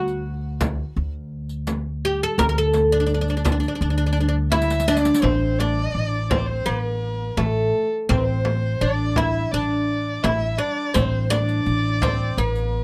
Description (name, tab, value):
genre	Persian modal ensemble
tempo	84 BPM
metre	4/4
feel	straight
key	D dastgah homayun, A dastgah shur from 5.2 s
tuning	A4 = 440 Hz
part	oud	melody	0.0-12.8 s	A3 to Bb4	-25 LUFS	equal	none
part	upright bass	bass	0.0-12.8 s	A1 to D2	-26 LUFS	equal	none
part	riq	percussion	0.1-5.2, 11.0-12.6 s	none	-34 LUFS	equal	none
part	frame drum	percussion	0.6-12.2 s	none	-28 LUFS	equal	none
part	dark violin	second line	4.5-12.8 s	A4 to E5	-30 LUFS	equal	none
room	little or no reverb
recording	close, detailed microphones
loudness	-22 LUFS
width	mono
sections	0.0-5.2 A section; 5.2-12.8 B section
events	drum fill 4.5-5.2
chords	none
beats	0.26 0.97 1.68 | 2.39 3.10 3.81 4.52 | 5.24 5.95 6.66 7.38 | 8.09 8.81 9.52 10.23 | 10.95 11.66 12.37